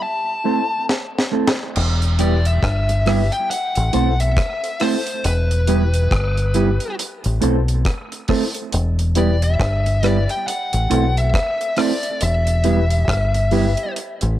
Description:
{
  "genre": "roots reggae",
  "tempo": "69 BPM",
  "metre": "4/4",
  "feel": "swing 60% on 16ths",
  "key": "E minor",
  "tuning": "A4 = 440 Hz",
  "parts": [
    { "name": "fuzz lead guitar", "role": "melody", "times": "0.0-13.9 s", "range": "B4 to A5", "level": "-23 LUFS", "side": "left 2 dB", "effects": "distortion, cassette tape, tape echo" },
    { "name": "mellow reed electric piano", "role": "stabs", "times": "0.4-13.7 s", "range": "E4 to C5", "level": "-27 LUFS", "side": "left 11 dB", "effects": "fast tremolo, cassette tape" },
    { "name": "mellow electric guitar", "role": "accompaniment", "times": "0.5-13.7 s", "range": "G3 to A4", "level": "-24 LUFS", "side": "right 8 dB", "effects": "cassette tape, tape echo" },
    { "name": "deep reggae drum kit", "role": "drums", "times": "0.9-14.4 s", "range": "crash cymbal, hi-hat, kick drum, rim click, snare drum", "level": "-23 LUFS", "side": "equal", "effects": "cassette tape" },
    { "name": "deep dub fingered electric bass", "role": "bass", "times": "1.8-14.4 s", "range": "E1 to B1", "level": "-17 LUFS", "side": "equal", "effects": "none" }
  ],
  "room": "light reverb, small room ambience",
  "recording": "home recording on cassette",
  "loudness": "-16 LUFS",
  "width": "side -13 dB against mid",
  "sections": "0.0-1.8 A section; 1.8-14.4 B section",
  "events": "break 0.0-1.8; drum fill 0.9-1.8",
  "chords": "0.0 Am; 1.8 Em; 3.5 Am; 5.2 Em; 7.0 Am; 8.7 Em; 10.5 Am; 12.2 Em"
}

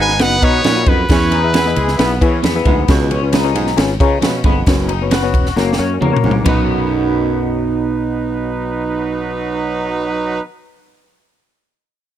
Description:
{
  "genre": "uptempo 1960s-style soul",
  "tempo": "134 BPM",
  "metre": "4/4",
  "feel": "straight",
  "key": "B major",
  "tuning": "A4 = 439 Hz",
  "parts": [
    { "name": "brilliant trumpet", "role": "melody", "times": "0.0-2.2 s", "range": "B4 to G#5", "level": "-17 LUFS", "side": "equal", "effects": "none" },
    { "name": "warm horn section", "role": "second line", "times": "0.0-2.4, 6.5-10.4 s", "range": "F#3 to C#5", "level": "-21 LUFS", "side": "right 3 dB", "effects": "none" },
    { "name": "barky reed electric piano", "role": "accompaniment", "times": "0.0-10.4 s", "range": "B1 to C#6", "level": "-21 LUFS", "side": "left 6 dB", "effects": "overdrive, fast tremolo" },
    { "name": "breathy baritone saxophone", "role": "riff", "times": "0.0-7.8 s", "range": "E2 to B2", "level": "-22 LUFS", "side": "right 6 dB", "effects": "none" },
    { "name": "electric guitar through a small old amp", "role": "riff", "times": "0.0-7.8 s", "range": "A#3 to F#4", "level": "-24 LUFS", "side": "left 9 dB", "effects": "lush chorus" },
    { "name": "sustaining fretless electric bass", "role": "bass", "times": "0.0-10.4 s", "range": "E1 to E3", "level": "-20 LUFS", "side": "equal", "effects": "none" },
    { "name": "compact cocktail drum kit", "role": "drums", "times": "0.1-6.6 s", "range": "kick drum, ride cymbal, snare drum, toms", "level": "-16 LUFS", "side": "equal", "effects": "none" },
    { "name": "congas", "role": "percussion", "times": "0.2-6.7 s", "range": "none", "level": "-26 LUFS", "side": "right 1 dB", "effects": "none" },
    { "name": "electric guitar at the edge of break-up", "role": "stabs", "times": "0.7-10.5 s", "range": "G#3 to B4", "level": "-22 LUFS", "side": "right 6 dB", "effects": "none" }
  ],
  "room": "small room ambience",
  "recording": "none",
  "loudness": "-13 LUFS",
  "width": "side -11 dB against mid",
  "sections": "0.0-6.5 A section; 6.5-10.0 B section",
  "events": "drum fill 5.6-6.5; reed electric piano fill 5.8-6.5",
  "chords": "0.0 B; 1.1 E; 2.9 C#7; 4.7 F#sus4; 5.6 F#; 6.5 B"
}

